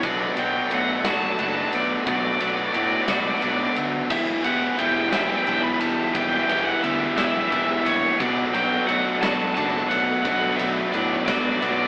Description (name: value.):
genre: post-rock.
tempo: 59 BPM (dotted quarters).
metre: 6/8.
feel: straight.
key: unclear.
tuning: A4 = 441 Hz.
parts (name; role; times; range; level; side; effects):
overdriven semi-hollow guitar; melody; 0.0-11.9 s; C#5 to B5; -24 LUFS; equal; none.
warm chamber string section; sustained chords; 0.0-11.9 s; G4 to B5; -38 LUFS; equal; none.
clean electric guitar; arpeggios; 0.0-11.9 s; E2 to F#4; -31 LUFS; equal; none.
distorted electric guitar; riff; 0.0-11.9 s; B2 to G4; -24 LUFS; equal; overdrive.
fuzz fingered electric bass; bass; 0.0-11.9 s; E1 to A2; -32 LUFS; equal; overdrive.
big rock drum kit; drums; 0.0-11.8 s; crash cymbal, kick drum, ride cymbal, snare drum; -29 LUFS; equal; none.
overdriven semi-hollow guitar; riff; 4.1-11.9 s; B2 to G4; -30 LUFS; right 1 dB; none.
room: wet stone room reverb, RT60 1.1 s.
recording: band playing live in one room, AM radio sound.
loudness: -19 LUFS.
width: side -26 dB against mid.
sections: 0.0-11.9 A section.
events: none.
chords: 0.0 Bm7; 4.1 Em7; 8.2 Bm7.